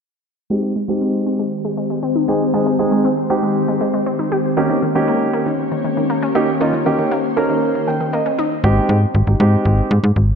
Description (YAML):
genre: pop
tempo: 118 BPM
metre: 4/4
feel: straight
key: Ab major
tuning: A4 = 436 Hz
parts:
  - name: dark concert grand piano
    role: accompaniment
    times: 0.5-9.9 s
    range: Ab3 to G5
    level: -19 LUFS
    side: right 2 dB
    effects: low-pass filter
  - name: ethereal airy pad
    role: sustained chords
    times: 1.3-8.6 s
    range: Eb3 to Db5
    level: -21 LUFS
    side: left 1 dB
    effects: ensemble chorus, built-in reverb, low-pass filter
  - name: wide unison pluck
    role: arpeggios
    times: 0.5-8.5 s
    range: Eb3 to G4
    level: -23 LUFS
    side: left 1 dB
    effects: low-pass filter, digital delay
  - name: slap-like FM bass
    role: bass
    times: 8.6-10.3 s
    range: Ab1 to Ab2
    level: -13 LUFS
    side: equal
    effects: none
room: moderate lush hall reverb, RT60 2.2 s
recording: dark, warm production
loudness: -15 LUFS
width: side -6 dB against mid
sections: 0.5-8.6 A section; 8.6-10.4 B section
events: filter sweep 0.5-8.6; grand piano fill 7.6-8.6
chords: 0.5 Abmaj7; 4.6 Eb7; 8.6 Abmaj7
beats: | 0.50 1.01 1.52 2.03 | 2.54 3.04 3.55 4.06 | 4.57 5.08 5.59 6.09 | 6.60 7.11 7.62 8.13 | 8.64 9.15 9.65 10.16